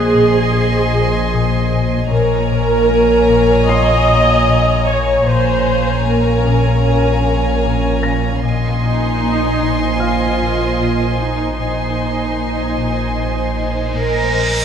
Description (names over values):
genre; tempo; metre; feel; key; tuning
cinematic, suspense film score; 76 BPM; 4/4; straight; unclear; A4 = 441 Hz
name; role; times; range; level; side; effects
warm chamber violin section; melody; 0.0-14.5 s; Bb5 to C6; -27 LUFS; left 2 dB; none
warm chamber violin section; second line; 0.0-14.5 s; Db5 to Ab5; -22 LUFS; left 1 dB; none
dark symphonic viola section; accompaniment; 0.0-13.9 s; Eb4 to Eb5; -17 LUFS; right 1 dB; none
ethereal airy pad; sustained chords; 0.0-14.6 s; Db4 to Ab5; -26 LUFS; equal; ensemble chorus, built-in reverb
warm chamber cello section; bass; 0.0-14.6 s; Bb2 to Bb4; -22 LUFS; right 4 dB; none
warm chamber double bass section; bass; 0.0-14.5 s; Bb1; -23 LUFS; right 3 dB; none
deep rumbling drone; drone; 0.0-14.6 s; Bb1; -23 LUFS; equal; built-in reverb
felt-muted upright piano; texture; 0.0-14.6 s; Bb4 to C7; -31 LUFS; left 2 dB; none
buzzing marimba with soft mallets; riff; 0.1-14.6 s; Bb2 to Bb3; -21 LUFS; left 8 dB; none
reverse cymbal; sound effects; 13.9-14.6 s; none; -24 LUFS; equal; none
room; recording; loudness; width
wet scoring stage reverb, RT60 1.8 s; none; -13 LUFS; side -8 dB against mid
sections
0.0-14.6 A section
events
reverse cymbal 13.9-14.6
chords
0.0 Ab/Bb; 2.1 Bbm7; 8.4 Ab/Bb